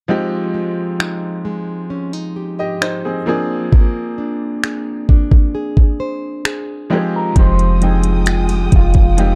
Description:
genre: contemporary R&B.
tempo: 66 BPM.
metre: 4/4.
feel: straight.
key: F minor.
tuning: A4 = 441 Hz.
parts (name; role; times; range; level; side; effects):
bright baby grand piano; accompaniment; 0.1-9.4 s; F3 to G5; -24 LUFS; equal; none.
nylon-string guitar; arpeggios; 0.1-9.4 s; F3 to C5; -25 LUFS; equal; none.
smooth R&B drum kit; drums; 1.0-9.4 s; finger snaps, hi-hat, kick drum; -14 LUFS; equal; none.
electric guitar with an envelope filter; melody; 6.9-9.4 s; F4 to C5; -26 LUFS; equal; lush chorus, digital delay.
warm studio string section; sustained chords; 7.4-9.4 s; Ab3 to Eb6; -31 LUFS; equal; sidechain pumping.
soft 808-style bass; bass; 7.4-9.4 s; F1; -17 LUFS; equal; none.
room: small room ambience.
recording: dark, warm production.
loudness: -16 LUFS.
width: mono.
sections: 0.1-7.4 A section; 7.4-9.4 B section.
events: none.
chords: 0.1 Fm9; 3.3 Bb9; 7.4 Fm9.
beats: | 0.09 1.00 1.91 2.82 | 3.73 4.63 5.54 6.45 | 7.36 8.27 9.18.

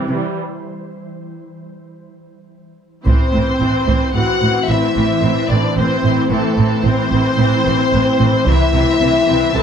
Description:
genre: cinematic, hybrid orchestral and electronic film score.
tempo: 111 BPM.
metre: 5/4.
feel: straight.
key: A dorian.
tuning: A4 = 440 Hz.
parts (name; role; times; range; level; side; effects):
warm symphonic viola section; accompaniment; 0.0-9.6 s; E3 to C4; -22 LUFS; right 3 dB; none.
ethereal airy pad; sustained chords; 0.0-9.6 s; E3 to C5; -24 LUFS; right 1 dB; ensemble chorus, built-in reverb.
mellow French horn section; sustained chords; 0.0-9.6 s; A3 to A4; -19 LUFS; left 4 dB; none.
warm symphonic cello section; bass; 0.1-9.6 s; A2 to C3; -22 LUFS; right 3 dB; none.
warm symphonic violin section; second line; 3.1-9.6 s; A4 to A5; -20 LUFS; left 3 dB; none.
warm symphonic double bass section; bass; 3.1-9.6 s; A1 to C2; -20 LUFS; right 4 dB; none.
solo taiko drums; drums; 3.1-4.1, 8.5-9.5 s; none; -18 LUFS; right 1 dB; none.
room: moderate recital hall reverb, RT60 1.7 s.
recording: close, detailed microphones.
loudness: -13 LUFS.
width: side -7 dB against mid.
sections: 0.0-3.1 A section; 3.1-9.6 B section.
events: break 0.4-3.1.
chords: 0.0 C; 3.1 Am; 8.5 C.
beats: | 0.36 0.90 1.44 1.98 2.52 | 3.06 3.60 4.14 4.68 5.22 | 5.76 6.30 6.84 7.39 7.93 | 8.47 9.01 9.55.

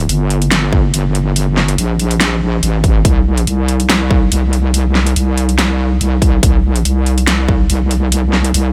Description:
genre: deep dubstep.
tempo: 142 BPM.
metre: 4/4.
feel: swing 54% on 16ths, half-time.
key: G minor.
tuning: A4 = 436 Hz.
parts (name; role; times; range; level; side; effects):
wobble bass; bass; 0.0-8.7 s; G1 to C2; -16 LUFS; equal; chorus.
dubstep drum kit; drums; 0.1-8.6 s; hi-hat, snare drum; -20 LUFS; equal; none.
electronic kick drum; drums; 0.7-7.6 s; none; -15 LUFS; equal; none.
room: little or no reverb.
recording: none.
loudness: -14 LUFS.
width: mono.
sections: 0.0-8.7 A section.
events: none.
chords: none.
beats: 0.09 0.52 0.94 | 1.36 1.78 2.21 2.63 | 3.05 3.47 3.90 4.32 | 4.74 5.16 5.58 6.01 | 6.43 6.85 7.28 7.70 | 8.12 8.54.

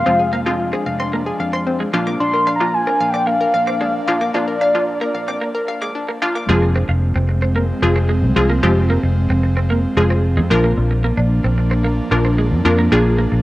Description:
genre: pop.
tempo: 112 BPM.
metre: 4/4.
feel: straight.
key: F dorian.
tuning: A4 = 438 Hz.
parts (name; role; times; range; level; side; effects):
warm velvety synth lead; melody; 0.0-6.2 s; D5 to C6; -18 LUFS; equal; chorus, cassette tape, analog delay.
airy breathy pad; sustained chords; 0.0-13.4 s; F3 to D4; -24 LUFS; equal; chorus, cassette tape.
hollow square pluck; arpeggios; 0.0-6.5 s; C4 to D6; -24 LUFS; left 2 dB; chorus, cassette tape, analog delay.
wavetable chord stab; accompaniment; 0.1-13.4 s; F3 to Bb4; -19 LUFS; left 1 dB; cassette tape.
twelve-string electric guitar; riff; 0.1-13.3 s; Ab3 to F4; -25 LUFS; right 2 dB; lush chorus, cassette tape.
vintage muted fingered electric bass; bass; 0.1-13.4 s; F1 to F2; -18 LUFS; equal; none.
room: moderate spring reverb, RT60 2.2 s.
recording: home recording on cassette, high-pass filter.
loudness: -15 LUFS.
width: side -17 dB against mid.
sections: 0.0-6.5 A section; 6.5-13.4 B section.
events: build-up 0.0-6.5; filter sweep 0.0-6.5; break 5.4-6.5; drop 6.5-13.4.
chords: 0.0 Fm; 1.9 Bb; 6.5 Fm; 10.5 Bb.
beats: | 0.06 0.59 1.13 1.67 | 2.20 2.74 3.27 3.81 | 4.34 4.88 5.42 5.95 | 6.49 7.02 7.56 8.10 | 8.63 9.17 9.70 10.24 | 10.77 11.31 11.85 12.38 | 12.92.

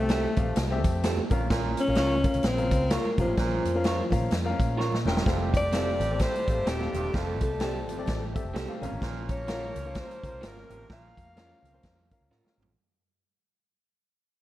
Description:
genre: uptempo 1960s-style soul.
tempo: 128 BPM.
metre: 4/4.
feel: swing 58% on 8ths.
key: unclear.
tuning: A4 = 438 Hz.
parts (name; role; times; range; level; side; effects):
breathy alto saxophone; melody; 0.0-12.3 s; F3 to F5; -30 LUFS; left 2 dB; tape echo.
warm upright piano; accompaniment; 0.0-12.7 s; Bb2 to G5; -35 LUFS; left 4 dB; none.
vintage muted fingered electric bass; bass; 0.0-12.7 s; Eb1 to Bb2; -31 LUFS; equal; none.
electric guitar through a small old amp; stabs; 0.1-12.5 s; C4 to Db5; -34 LUFS; right 4 dB; none.
swinging big-band drum kit; drums; 0.1-12.7 s; hi-hat, kick drum, snare drum, toms; -29 LUFS; equal; none.
congas; percussion; 0.2-12.7 s; none; -41 LUFS; right 4 dB; none.
breathy baritone saxophone; riff; 1.3-12.7 s; F2 to C3; -37 LUFS; right 9 dB; none.
clear horn section; second line; 5.3-12.3 s; C3 to Bb4; -41 LUFS; right 5 dB; none.
room: small room reverb.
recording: dark, warm production.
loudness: -24 LUFS.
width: side -14 dB against mid.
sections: 0.0-5.3 A section; 5.3-12.8 B section.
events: drum fill 4.8-5.3, 12.3-12.8; fade-out 5.3-12.8.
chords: 0.0 Fadd9; 1.3 Bbm; 5.3 Fadd9; 8.8 Bbm.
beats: 0.10 0.57 1.04 | 1.51 1.98 2.45 2.92 | 3.38 3.85 4.32 4.79 | 5.26 5.73 6.20 6.67 | 7.14 7.61 8.08 8.55 | 9.02 9.49 9.96 10.43 | 10.89 11.37 11.83 12.30.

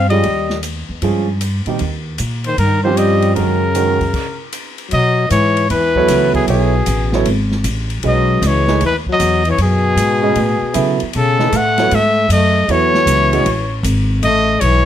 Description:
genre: modal jazz.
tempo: 154 BPM.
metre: 4/4.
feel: swing 66% on 8ths.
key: B mixolydian from 4.9 s.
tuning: A4 = 439 Hz.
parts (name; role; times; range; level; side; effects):
breathy trumpet; melody; 0.0-14.9 s; G#4 to F#5; -16 LUFS; equal; plate reverb.
breathy trombone; second line; 0.0-14.9 s; B2 to A3; -20 LUFS; left 6 dB; none.
upright bass; bass; 0.0-14.9 s; G#1 to C#3; -17 LUFS; equal; none.
warm concert grand piano; accompaniment; 0.1-13.5 s; Eb3 to E5; -18 LUFS; right 6 dB; none.
open jazz drum kit; drums; 0.1-14.7 s; crash cymbal, hi-hat, kick drum, ride cymbal, snare drum; -26 LUFS; left 1 dB; none.
room: light reverb.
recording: none.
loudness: -13 LUFS.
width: side -10 dB against mid.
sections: 0.0-4.9 A section; 4.9-14.9 B section.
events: stop 4.1-4.9.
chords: 0.0 Cm/Eb; 3.4 Gbadd9; 4.9 B13sus4.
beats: | 0.24 0.63 1.02 1.41 | 1.80 2.19 2.58 2.97 | 3.36 3.75 4.14 4.53 | 4.92 5.31 5.70 6.09 | 6.48 6.87 7.26 7.65 | 8.04 8.43 8.81 9.20 | 9.59 9.98 10.37 10.75 | 11.14 11.53 11.91 12.30 | 12.69 13.07 13.46 13.85 | 14.23 14.62.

